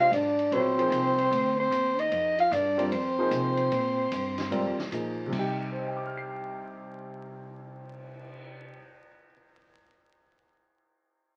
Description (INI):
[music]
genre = modal jazz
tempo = 150 BPM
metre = 4/4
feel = swing 65% on 8ths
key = C minor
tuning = A4 = 440 Hz
[part]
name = breathy soprano saxophone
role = melody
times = 0.0-4.9 s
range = C5 to F5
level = -28 LUFS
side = equal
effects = none
[part]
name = breathy trombone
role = second line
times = 0.0-4.9 s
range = C4 to F4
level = -33 LUFS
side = equal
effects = none
[part]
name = warm concert grand piano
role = accompaniment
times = 0.0-9.5 s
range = C2 to C7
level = -35 LUFS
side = equal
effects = none
[part]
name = upright bass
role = bass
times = 0.0-8.7 s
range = Ab1 to C3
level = -41 LUFS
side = equal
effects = none
[part]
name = vintage drum kit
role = drums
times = 0.1-8.4 s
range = crash cymbal, cymbal swell, hi-hat, kick drum, ride cymbal, snare drum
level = -45 LUFS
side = equal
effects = none
[sound]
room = moderate studio reverb, RT60 0.7 s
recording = very old 78 rpm record, vinyl crackle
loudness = -28 LUFS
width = mono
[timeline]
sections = 0.0-5.3 A section; 5.3-8.5 B section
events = none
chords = 0.0 Bb9sus4; 5.3 Cm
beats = 0.12 | 0.52 0.92 1.32 1.72 | 2.12 2.52 2.92 3.32 | 3.72 4.12 4.52 4.92 | 5.32 5.72 6.12 6.52 | 6.92 7.32 7.72 8.12